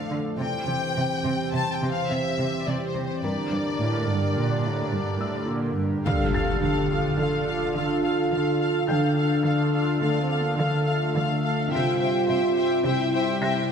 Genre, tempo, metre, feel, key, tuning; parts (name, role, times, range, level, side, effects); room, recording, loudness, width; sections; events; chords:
cinematic; 106 BPM; 5/4; straight; D minor; A4 = 442 Hz
rich studio violin section; melody; 0.0-5.5 s; C5 to A5; -30 LUFS; left 4 dB
chorused pulse-width pad; sustained chords; 0.0-13.7 s; D3 to D5; -28 LUFS; right 1 dB
felt-muted upright piano; texture; 0.0-13.7 s; Bb4 to Bb6; -40 LUFS; left 2 dB; ping-pong delay
warm studio cello section; bass; 0.1-13.7 s; G2 to D3; -28 LUFS; right 2 dB
warm symphonic violin section; second line; 6.1-13.7 s; E5 to G5; -30 LUFS; left 3 dB
rich studio viola section; accompaniment; 6.1-13.7 s; A4 to F5; -30 LUFS; right 1 dB
mellow French horn section; sustained chords; 6.1-13.7 s; A3 to G4; -26 LUFS; equal
impact; sound effects; 6.1-8.9 s; -30 LUFS; equal
wet scoring stage reverb, RT60 1.9 s; -22 LUFS; side -7 dB against mid
0.0-6.1 A section; 6.1-13.7 B section
impact 6.1-8.9
0.4 C; 3.2 Gm; 6.1 Dm; 11.7 C